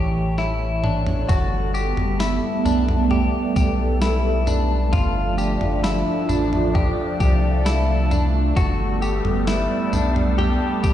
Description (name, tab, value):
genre	dream pop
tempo	66 BPM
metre	4/4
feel	straight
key	G major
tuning	A4 = 439 Hz
part	phased analog pad	sustained chords	0.0-10.9 s	E3 to C#5	-23 LUFS	right 3 dB	phaser, chorus
part	clean electric guitar	arpeggios	0.0-10.9 s	D4 to G4	-26 LUFS	left 4 dB	analog chorus, ping-pong delay
part	round analog bass	bass	0.0-10.9 s	G1 to C2	-22 LUFS	equal	none
part	clean 12-bit digital drum machine	drums	0.4-10.9 s	kick drum, snare drum, tambourine, toms	-24 LUFS	equal	none
part	qanun	texture	1.3-10.9 s	G5 to A5	-36 LUFS	right 2 dB	ping-pong delay
room	light reverb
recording	played on a big sound system in a bare room, stone room reverb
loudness	-18 LUFS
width	side -11 dB against mid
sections	0.0-1.3 A section; 1.3-10.9 B section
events	drum fill 0.4-1.3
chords	0.0 A7; 1.3 Gmaj9; 4.9 F69/G; 8.6 Gmaj9